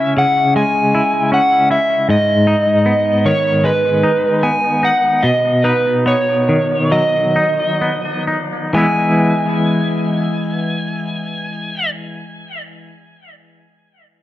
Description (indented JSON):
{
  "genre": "rock",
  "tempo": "63-78 BPM",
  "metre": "4/4",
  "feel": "straight",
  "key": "E major",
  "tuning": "A4 = 440 Hz",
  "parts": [
    { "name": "overdriven slide guitar", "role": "melody", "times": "0.0-11.9 s", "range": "B4 to G#5", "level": "-16 LUFS", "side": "equal", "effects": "analog delay" },
    { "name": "twangy electric guitar", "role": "arpeggios", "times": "0.0-12.3 s", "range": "G#2 to E4", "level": "-16 LUFS", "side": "left 1 dB", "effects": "tremolo, analog delay" }
  ],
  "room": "light reverb",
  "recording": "dark, warm production",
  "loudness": "-13 LUFS",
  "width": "side -14 dB against mid",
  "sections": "0.0-8.8 A section; 8.8-12.6 B section",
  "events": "slowing down 2.1-8.8",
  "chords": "0.0 C#m; 2.1 G#m; 5.2 B; 8.8 E"
}